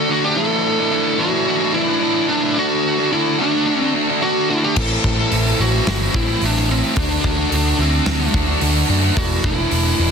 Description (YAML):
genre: quiet-loud alternative rock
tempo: 109 BPM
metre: 4/4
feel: straight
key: unclear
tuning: A4 = 445 Hz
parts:
  - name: fuzz lead guitar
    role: melody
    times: 0.0-10.1 s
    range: C4 to A4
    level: -21 LUFS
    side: equal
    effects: distortion, plate reverb
  - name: fuzz guitar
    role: riff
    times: 0.0-10.1 s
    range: A2 to F#4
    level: -18 LUFS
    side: equal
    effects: distortion
  - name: overdriven picked electric bass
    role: bass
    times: 4.8-10.1 s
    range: E1 to F#2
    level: -20 LUFS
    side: equal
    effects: none
  - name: big rock drum kit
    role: drums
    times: 4.8-9.8 s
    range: crash cymbal, hi-hat, kick drum, snare drum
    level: -22 LUFS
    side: equal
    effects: none
room: light reverb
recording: dense, heavily limited modern master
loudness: -15 LUFS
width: side -6 dB against mid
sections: 0.0-10.1 A section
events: none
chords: 0.4 Asus4/E; 2.6 D; 4.8 Am; 7.0 D; 9.2 Asus4/E